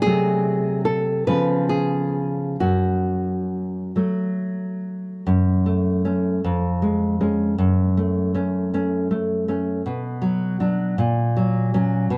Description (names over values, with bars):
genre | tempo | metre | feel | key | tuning
romantic duo for nylon-string guitar and classical guitar | 44-54 BPM (dotted quarters) | 6/8 | rubato | F# minor | A4 = 441 Hz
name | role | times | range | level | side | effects
nylon-string guitar | melody | 0.0-4.8 s | F#4 to B4 | -26 LUFS | equal | none
nylon-string guitar | accompaniment | 0.1-12.2 s | E#2 to D4 | -22 LUFS | equal | none
room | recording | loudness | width
light reverb | dark, warm production | -22 LUFS | mono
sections
0.0-5.3 A section; 5.3-12.2 B section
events
none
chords
0.0 G#7b9/B#; 1.3 C#7; 2.6 F#m; 6.4 C#/E#; 7.6 F#m; 9.8 Bm; 11.0 F#/A#